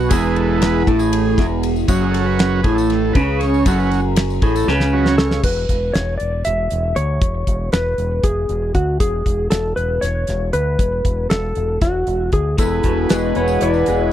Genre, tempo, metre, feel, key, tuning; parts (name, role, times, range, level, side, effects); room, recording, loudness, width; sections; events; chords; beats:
psychedelic rock; 235 BPM (eighths); 7/8; straight; E mixolydian; A4 = 439 Hz
overdriven combo organ; sustained chords; 0.0-5.4, 12.6-14.1 s; E3 to G#5; -23 LUFS; right 7 dB
electric guitar through a small old amp; riff; 0.0-5.4, 12.6-14.1 s; E2 to B3; -18 LUFS; equal; phaser
growling fingered electric bass; bass; 0.0-14.1 s; E1 to D2; -21 LUFS; equal; overdrive
damped 70s drum kit; drums; 0.1-14.0 s; crash cymbal, hi-hat, kick drum, ride cymbal, snare drum; -19 LUFS; equal
tambourine; percussion; 0.1-5.3, 12.6-13.9 s; -37 LUFS; left 10 dB
clean lap steel guitar; melody; 5.2-14.1 s; F#4 to E5; -21 LUFS; equal; tape echo
studio ambience; dry, close 1970s-style studio recording; -15 LUFS; side -11 dB against mid
0.0-5.4 A section; 5.4-14.1 B section
transistor combo organ solo 0.0-5.4; drum fill 4.7-5.4
0.0 E; 1.9 F#5; 5.4 E
| 0.12 0.37 0.62 0.88 1.13 1.38 1.64 | 1.89 2.14 2.40 2.65 2.90 3.15 3.41 | 3.66 3.92 4.17 4.42 4.68 4.93 5.18 | 5.44 5.69 5.95 6.20 6.46 6.71 6.97 | 7.22 7.48 7.73 7.99 8.24 8.50 8.75 | 9.01 9.27 9.52 9.78 10.03 10.29 10.54 | 10.80 11.05 11.31 11.56 11.82 12.08 12.33 | 12.59 12.84 13.10 13.35 13.61 13.87 14.12